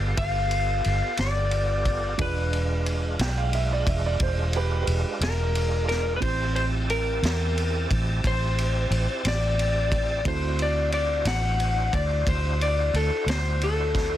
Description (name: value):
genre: slow blues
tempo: 60 BPM (dotted quarters)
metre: 12/8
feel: straight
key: unclear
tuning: A4 = 440 Hz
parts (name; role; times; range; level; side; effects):
- electric slide guitar; melody; 0.0-14.2 s; A4 to F#5; -28 LUFS; left 3 dB; none
- dark upright piano; accompaniment; 0.0-14.2 s; C4 to D5; -38 LUFS; right 10 dB; none
- tonewheel organ; sustained chords; 0.0-14.2 s; G#3 to A5; -34 LUFS; right 2 dB; slow rotary speaker, overdrive, chorus vibrato
- vintage muted fingered electric bass; bass; 0.0-14.2 s; E1 to E2; -25 LUFS; equal; none
- vintage drum kit; drums; 0.2-14.1 s; kick drum, ride cymbal, snare drum; -30 LUFS; equal; none
- warm upright piano; second line; 3.2-5.0 s; G4 to G5; -30 LUFS; right 8 dB; digital delay
room: light reverb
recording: dense, heavily limited modern master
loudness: -22 LUFS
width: side -12 dB against mid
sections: 0.0-14.2 A section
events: none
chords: 0.0 G9; 2.2 E7b9; 6.2 Am7; 10.2 D9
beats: 0.16 1.17 | 2.18 3.19 4.20 5.21 | 6.21 7.22 8.23 9.24 | 10.25 11.26 12.26 13.27